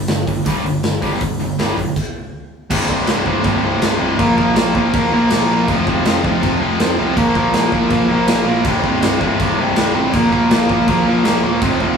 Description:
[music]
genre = punk rock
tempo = 162 BPM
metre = 4/4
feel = straight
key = unclear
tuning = A4 = 440 Hz
[part]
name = distorted electric guitar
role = riff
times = 0.0-12.0 s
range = C2 to Bb3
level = -19 LUFS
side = left 5 dB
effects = overdrive
[part]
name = distorted electric guitar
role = riff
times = 0.0-12.0 s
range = C2 to Bb3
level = -22 LUFS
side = right 7 dB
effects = overdrive
[part]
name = fuzz picked electric bass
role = bass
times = 0.0-12.0 s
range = C1 to C2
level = -23 LUFS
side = right 1 dB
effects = overdrive
[part]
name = big rock drum kit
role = drums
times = 0.1-11.9 s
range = crash cymbal, hi-hat, kick drum, snare drum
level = -20 LUFS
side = equal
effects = none
[part]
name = sludgy distorted guitar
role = riff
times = 2.7-12.0 s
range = C2 to Bb3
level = -20 LUFS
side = right 1 dB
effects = overdrive
[sound]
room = light reverb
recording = band playing live in one room, small room ambience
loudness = -14 LUFS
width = side -6 dB against mid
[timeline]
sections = 0.0-2.7 A section; 2.7-12.0 B section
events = stop 2.0-2.7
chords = 0.0 G5; 2.7 C5; 4.2 Bb5; 5.7 F5; 7.2 Bb5; 8.6 C5; 10.1 Bb5

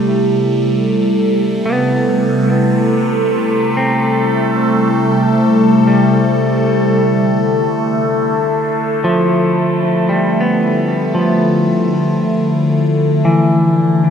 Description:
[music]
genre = ambient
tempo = 57 BPM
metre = 4/4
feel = straight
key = A minor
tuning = A4 = 444 Hz
[part]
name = evolving wavetable pad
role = sustained chords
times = 0.0-14.1 s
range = C3 to A4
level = -13 LUFS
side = equal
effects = phaser, built-in reverb
[part]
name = clean electric guitar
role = arpeggios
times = 0.0-14.1 s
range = E3 to C4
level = -17 LUFS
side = equal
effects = analog delay
[part]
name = analog drone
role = drone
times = 4.6-14.1 s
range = A3 to E4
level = -23 LUFS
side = left 2 dB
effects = chorus, phaser
[sound]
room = wet plate reverb, RT60 3.5 s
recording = dreamy mix soaked in reverb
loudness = -12 LUFS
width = side -7 dB against mid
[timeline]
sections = 0.0-14.1 A section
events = none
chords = 0.0 Am7; 6.9 Dm

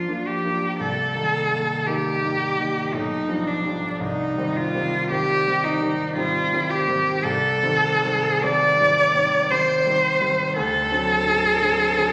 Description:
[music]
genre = classical, romantic duo for cello and grand piano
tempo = 56 BPM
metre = 3/4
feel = rubato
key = unclear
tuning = A4 = 438 Hz
[part]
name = rich cello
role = melody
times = 0.0-12.1 s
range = D4 to D5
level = -22 LUFS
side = equal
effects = none
[part]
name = warm concert grand piano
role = accompaniment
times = 0.0-12.1 s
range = B1 to Eb4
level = -29 LUFS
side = equal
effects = none
[sound]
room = wet concert hall reverb, RT60 2.1 s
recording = vinyl crackle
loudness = -21 LUFS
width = mono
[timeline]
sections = 0.0-12.1 A section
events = none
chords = 0.0 Bb; 0.8 Cm7; 2.9 G7/B; 4.0 Cm; 10.6 D7

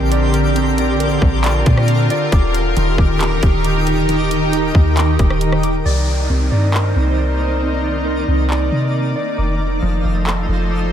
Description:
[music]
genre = hip hop, atmospheric cloud-rap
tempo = 136 BPM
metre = 4/4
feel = half-time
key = C dorian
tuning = A4 = 440 Hz
[part]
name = shimmering ambient pad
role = sustained chords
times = 0.0-10.9 s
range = D3 to D5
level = -19 LUFS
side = equal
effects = chorus, built-in reverb, sidechain pumping
[part]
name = mellow electric guitar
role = arpeggios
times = 0.0-10.9 s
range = Eb3 to D6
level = -23 LUFS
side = right 2 dB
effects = ping-pong delay
[part]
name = soft 808-style bass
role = bass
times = 0.0-10.9 s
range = Eb1 to C3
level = -18 LUFS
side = equal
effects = none
[part]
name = twinkling granular texture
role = texture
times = 0.0-10.9 s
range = A3 to D6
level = -28 LUFS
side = left 1 dB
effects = built-in reverb
[part]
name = trap drum kit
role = drums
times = 0.1-10.4 s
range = handclaps, hi-hat, kick drum, rim click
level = -18 LUFS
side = equal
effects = none
[part]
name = downlifter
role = sound effects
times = 5.9-9.4 s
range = none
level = -30 LUFS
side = left 2 dB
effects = none
[sound]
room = light reverb, digital ambience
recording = none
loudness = -14 LUFS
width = side -9 dB against mid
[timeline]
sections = 0.0-5.9 A section; 5.9-10.9 B section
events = none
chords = 0.0 Bb69; 2.3 Ebmaj7; 5.9 Cm9; 9.4 F7

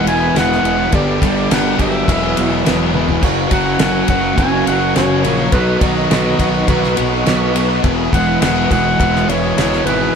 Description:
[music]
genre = classic rock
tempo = 104 BPM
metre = 4/4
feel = straight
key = unclear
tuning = A4 = 440 Hz
[part]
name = warm clarinet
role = melody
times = 0.0-10.2 s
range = B4 to G#5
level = -20 LUFS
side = equal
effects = none
[part]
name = fuzz lead guitar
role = second line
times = 0.0-10.2 s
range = B2 to C#4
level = -22 LUFS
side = right 3 dB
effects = distortion
[part]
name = tonewheel organ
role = sustained chords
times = 0.0-10.1 s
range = B3 to G5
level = -29 LUFS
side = equal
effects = none
[part]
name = overdriven electric guitar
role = riff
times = 0.0-10.1 s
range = E2 to G#4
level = -20 LUFS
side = left 1 dB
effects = none
[part]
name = overdriven semi-hollow guitar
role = riff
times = 0.0-10.2 s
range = E2 to B3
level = -19 LUFS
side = equal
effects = spring reverb
[part]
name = modern bright fingered electric bass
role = bass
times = 0.0-10.1 s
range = E1 to B1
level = -21 LUFS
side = equal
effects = none
[part]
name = damped 70s drum kit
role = drums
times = 0.1-10.0 s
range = crash cymbal, kick drum, ride cymbal, snare drum, toms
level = -19 LUFS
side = left 1 dB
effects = none
[sound]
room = moderate studio reverb, RT60 0.7 s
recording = band playing live in one room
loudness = -12 LUFS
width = side -6 dB against mid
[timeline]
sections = 0.0-10.2 A section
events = drum fill 3.0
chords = 0.0 Eadd9; 0.9 G; 2.1 Eadd9; 3.2 F#; 5.5 B; 7.8 Eadd9

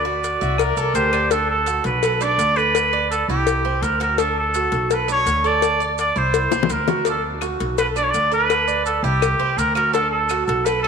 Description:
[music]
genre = latin, Cuban son and guajira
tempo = 167 BPM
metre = 4/4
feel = straight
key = D major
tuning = A4 = 440 Hz
[part]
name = trumpet with straight mute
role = melody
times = 0.0-10.9 s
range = G4 to D5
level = -20 LUFS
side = right 1 dB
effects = none
[part]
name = Cuban tres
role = arpeggios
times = 0.0-10.9 s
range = C4 to E5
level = -26 LUFS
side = right 7 dB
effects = none
[part]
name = upright bass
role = bass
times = 0.0-10.9 s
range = B1 to D2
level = -25 LUFS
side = equal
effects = none
[part]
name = cowbell and bongos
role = percussion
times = 0.2-10.8 s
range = none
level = -25 LUFS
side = left 11 dB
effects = none
[part]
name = maracas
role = percussion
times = 0.2-10.8 s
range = none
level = -36 LUFS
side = right 16 dB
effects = none
[part]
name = warm trumpet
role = second line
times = 0.4-1.3 s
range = F#4 to Bb4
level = -27 LUFS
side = left 8 dB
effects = none
[part]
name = claves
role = percussion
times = 0.6-1.3, 7.4-10.9 s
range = none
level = -36 LUFS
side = left 14 dB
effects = none
[sound]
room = wet echo chamber reverb, RT60 2.3 s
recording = 1960s-style stereo with parts hard left and right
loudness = -17 LUFS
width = side -6 dB against mid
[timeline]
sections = 0.0-1.3 A section; 1.3-10.9 B section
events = drum fill 6.5-7.1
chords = 0.0 D; 0.6 C7; 1.3 D; 2.0 Bm7; 2.7 D5; 3.5 C; 4.2 D; 4.9 Bm7; 5.6 D5; 6.3 C7; 7.1 D; 7.8 Bm7; 8.5 D5; 9.2 C; 9.9 D

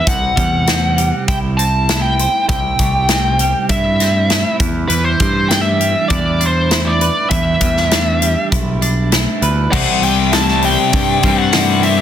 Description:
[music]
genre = quiet-loud alternative rock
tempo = 99 BPM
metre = 4/4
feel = straight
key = unclear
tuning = A4 = 440 Hz
[part]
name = smooth overdriven lead guitar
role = melody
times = 0.0-12.0 s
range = B4 to A5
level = -17 LUFS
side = equal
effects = slapback echo
[part]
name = twelve-string electric guitar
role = arpeggios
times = 0.0-12.0 s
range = C3 to C5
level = -22 LUFS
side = right 5 dB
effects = tremolo
[part]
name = growling picked electric bass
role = bass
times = 0.1-12.0 s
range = B1 to G2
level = -18 LUFS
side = equal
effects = overdrive
[part]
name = big rock drum kit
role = drums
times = 0.1-12.0 s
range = crash cymbal, hi-hat, kick drum, snare drum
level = -18 LUFS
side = left 1 dB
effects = none
[part]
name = fuzz guitar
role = riff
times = 9.7-12.0 s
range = C3 to C4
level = -16 LUFS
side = left 13 dB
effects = distortion
[sound]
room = light reverb, studio reverb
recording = dense, heavily limited modern master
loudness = -12 LUFS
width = side -10 dB against mid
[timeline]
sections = 0.0-9.7 A section; 9.7-12.0 B section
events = none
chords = 0.1 C; 4.6 Em7; 9.7 C

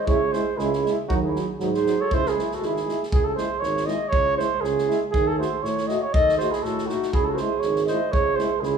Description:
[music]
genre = balkan folk, Balkan brass band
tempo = 119 BPM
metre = 2/4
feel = swing 54% on 16ths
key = C# harmonic minor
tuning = A4 = 440 Hz
[part]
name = mellow flugelhorn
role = melody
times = 0.0-8.8 s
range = F#4 to D#5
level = -24 LUFS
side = right 2 dB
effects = none
[part]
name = warm clarinet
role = second line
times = 0.0-3.0, 6.1-8.8 s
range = D#4 to B#4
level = -27 LUFS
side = right 6 dB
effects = none
[part]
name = clear trombone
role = accompaniment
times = 0.1-8.5 s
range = D#4 to F#4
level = -32 LUFS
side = left 8 dB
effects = none
[part]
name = warm euphonium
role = accompaniment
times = 0.1-8.5 s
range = F#3 to A3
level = -32 LUFS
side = right 6 dB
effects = none
[part]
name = warm tuba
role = bass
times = 0.1-8.8 s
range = G#1 to A2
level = -29 LUFS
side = right 2 dB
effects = none
[part]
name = natural country drum kit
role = percussion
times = 0.1-8.7 s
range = kick drum, snare drum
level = -28 LUFS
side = equal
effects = none
[sound]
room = wet recital hall reverb, RT60 1.6 s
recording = recorded in a church or concert hall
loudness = -20 LUFS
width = side -6 dB against mid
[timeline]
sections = 0.0-3.1 A section; 3.1-8.8 A section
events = none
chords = 0.0 C#m; 1.1 G#7b13/D#; 2.1 C#m; 5.1 D#dim; 7.1 C#m

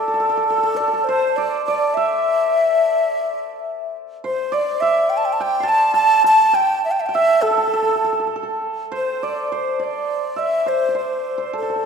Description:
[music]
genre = chinese traditional, Chinese chamber ensemble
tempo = 103 BPM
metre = 4/4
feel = straight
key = A yu mode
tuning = A4 = 441 Hz
[part]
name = breathy bright xiao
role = melody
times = 0.0-11.9 s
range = A4 to A5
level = -18 LUFS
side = left 1 dB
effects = none
[part]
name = hammered dulcimer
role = second line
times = 0.0-11.9 s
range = A4 to C6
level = -22 LUFS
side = right 3 dB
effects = none
[sound]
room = wet concert hall reverb, RT60 2.1 s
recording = minimal, uncompressed stereo recording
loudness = -16 LUFS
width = side -6 dB against mid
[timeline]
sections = 0.0-9.2 A section; 9.2-11.9 B section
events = none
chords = none

